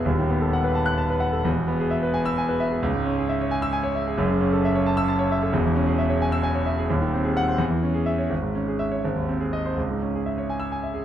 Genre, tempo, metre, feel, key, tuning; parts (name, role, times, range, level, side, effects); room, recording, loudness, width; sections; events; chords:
classical, virtuoso piano study; 80-90 BPM (dotted quarters); 6/8; rubato; C# minor from 4.2 s; A4 = 440 Hz
clear concert grand piano; solo; 0.0-11.0 s; D#1 to F#6; -21 LUFS; equal
moderate recital hall reverb, RT60 1.5 s; dark, warm production; -21 LUFS; side -10 dB against mid
0.0-9.8 A section; 9.8-11.0 B section
0.1 B7/D#; 1.4 E; 2.8 C#m; 4.2 F#m7; 5.5 C#m/E; 6.9 G#7/D#; 7.6 C#m/E; 8.3 C#m/G#; 9.0 G#; 9.8 C#m